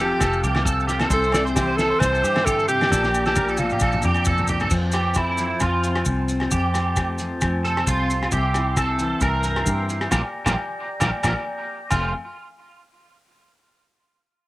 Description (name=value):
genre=highlife guitar band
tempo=133 BPM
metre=4/4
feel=swing 54% on 16ths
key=F major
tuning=A4 = 440 Hz
part: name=bright alto saxophone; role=melody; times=0.0-4.0 s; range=F4 to C5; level=-21 LUFS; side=equal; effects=cassette tape, plate reverb
part: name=picked steel-string acoustic guitar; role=accompaniment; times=0.0-12.1 s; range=F2 to G4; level=-28 LUFS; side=left 2 dB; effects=cassette tape
part: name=percussive tonewheel organ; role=sustained chords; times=0.0-12.1 s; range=A4 to C6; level=-32 LUFS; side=equal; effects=slow rotary speaker, cassette tape
part: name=electric guitar at the edge of break-up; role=arpeggios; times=0.0-12.1 s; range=E4 to D5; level=-25 LUFS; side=right 2 dB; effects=ensemble chorus, cassette tape, tape echo
part: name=fingered electric bass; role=bass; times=0.0-12.1 s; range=F1 to G2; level=-25 LUFS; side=equal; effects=none
part: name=cloth-damped thuddy drum kit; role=drums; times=0.2-12.0 s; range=crash cymbal, hi-hat, kick drum, rim click, snare drum, toms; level=-26 LUFS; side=equal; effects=cassette tape
part: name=agogo bells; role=percussion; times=0.2-12.0 s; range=none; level=-30 LUFS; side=left 2 dB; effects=none
part: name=maracas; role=percussion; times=0.2-12.1 s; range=none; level=-32 LUFS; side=left 2 dB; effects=none
room=light reverb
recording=home recording on cassette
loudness=-19 LUFS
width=side -18 dB against mid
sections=0.0-4.7 A section; 4.7-11.9 B section; 11.9-13.7 C section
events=drum fill 2.9-4.7; clean electric guitar solo 4.7-11.9; band accent 10.1-11.9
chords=0.0 Fadd9; 1.1 C; 2.9 Bb6; 4.7 Fadd9; 8.3 C; 10.1 Bb6; 11.9 Fadd9